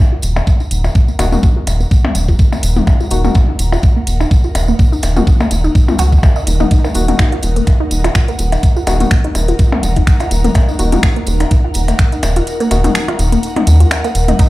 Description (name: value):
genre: minimal techno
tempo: 125 BPM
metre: 4/4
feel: swing 55% on 16ths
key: Eb minor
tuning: A4 = 440 Hz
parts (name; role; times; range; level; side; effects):
- ethereal airy pad; texture; 0.2-14.5 s; Eb4 to Bb5; -26 LUFS; equal; ensemble chorus, built-in reverb, phaser, sidechain pumping
- resonant blip pluck; riff; 0.1-14.4 s; Bb3 to Eb5; -21 LUFS; equal; phaser, sidechain pumping, dub echo
- rubbery square bass; bass; 0.2-14.3 s; Eb1 to Eb2; -13 LUFS; equal; sidechain pumping
- garage drum kit; drums; 0.2-14.5 s; finger snaps, hi-hat; -21 LUFS; equal; none
- tambourine; percussion; 0.2-14.5 s; none; -29 LUFS; right 2 dB; none
- electronic percussion blips and toms; percussion; 0.4-14.4 s; none; -21 LUFS; left 2 dB; dub echo
- electronic kick drum; drums; 0.5-14.5 s; none; -10 LUFS; equal; none
- percussive organ stab; stabs; 1.2-12.9 s; Bb3 to Gb4; -23 LUFS; left 2 dB; chorus, dub echo
room: light reverb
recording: played on a big sound system in a bare room, large studio reverb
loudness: -10 LUFS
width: side -18 dB against mid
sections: 0.0-14.4 A section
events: fade-in on ambient pad 0.0-14.4; filter sweep on synth pluck 0.0-14.4; kick drops out 12.5-14.4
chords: 0.0 Ebm